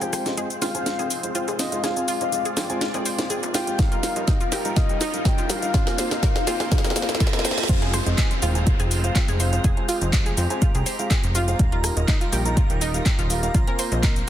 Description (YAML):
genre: progressive house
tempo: 123 BPM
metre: 4/4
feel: straight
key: F dorian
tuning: A4 = 440 Hz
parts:
  - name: soft octave-layered synth lead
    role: melody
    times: 0.0-7.2 s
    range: Eb5 to G5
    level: -30 LUFS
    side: left 3 dB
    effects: chorus, phaser, cassette tape, dub echo
  - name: filtered supersaw swell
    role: sustained chords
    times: 0.0-14.3 s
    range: G3 to D5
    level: -34 LUFS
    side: equal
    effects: sidechain pumping
  - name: analog pluck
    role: arpeggios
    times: 0.0-14.1 s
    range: Eb4 to C6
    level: -31 LUFS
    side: equal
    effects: chorus, sidechain pumping, dub echo
  - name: felt-muted upright piano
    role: stabs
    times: 0.0-14.1 s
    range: G3 to Bb5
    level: -30 LUFS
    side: equal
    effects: sidechain pumping, low-pass filter, dub echo
  - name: plucky analog bass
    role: bass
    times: 0.0-14.2 s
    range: Eb1 to Bb2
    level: -26 LUFS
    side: equal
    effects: tube saturation, sidechain pumping, high-pass filter
  - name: house drum kit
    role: drums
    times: 0.0-14.3 s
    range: crash cymbal, handclaps, hi-hat, rim click, shaker, snare drum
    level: -27 LUFS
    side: equal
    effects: none
  - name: riser, reverse cymbal and downlifter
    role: sound effects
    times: 2.7-11.6 s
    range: none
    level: -33 LUFS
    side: right 1 dB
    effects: none
  - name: electronic kick drum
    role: drums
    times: 3.8-14.1 s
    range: none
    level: -21 LUFS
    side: equal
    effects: none
  - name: drifting glass-harmonics texture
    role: texture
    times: 8.4-14.3 s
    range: Bb5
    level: -38 LUFS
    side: right 3 dB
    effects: chorus, built-in reverb, sidechain pumping
room: light reverb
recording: dense, heavily limited modern master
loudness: -20 LUFS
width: side -11 dB against mid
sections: 0.0-7.7 A section; 7.7-14.3 B section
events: build-up 0.0-7.7; drum fill 0.0-7.7; filter sweep on felt piano 0.0-7.7; riser 2.7-7.7; reverse cymbal 6.7-7.7; drop 7.7-14.3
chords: 0.0 Fm; 3.8 Ebadd9; 5.7 Bbsus2; 7.7 Fm; 11.6 Ebadd9; 13.5 Bbsus2